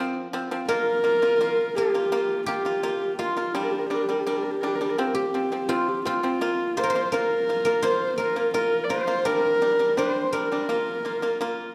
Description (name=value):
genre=mongolian traditional, Mongolian folk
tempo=84 BPM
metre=4/4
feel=straight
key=Bb gong mode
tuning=A4 = 440 Hz
part: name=pipa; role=arpeggios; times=0.0-11.7 s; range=F3 to F4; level=-31 LUFS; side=equal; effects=none
part: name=dark horsehead fiddle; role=melody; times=0.7-11.7 s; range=F4 to D5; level=-26 LUFS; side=equal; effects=none
part: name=guzheng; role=second line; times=0.7-11.7 s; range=F4 to C5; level=-32 LUFS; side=equal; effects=tape echo
room=wet recital hall reverb, RT60 1.4 s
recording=dark, warm production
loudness=-24 LUFS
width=mono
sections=0.7-11.7 A section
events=none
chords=0.0 F5; 0.7 Bb5; 3.6 G5; 5.0 F5; 6.4 Bb5; 9.3 G5; 10.7 Bb5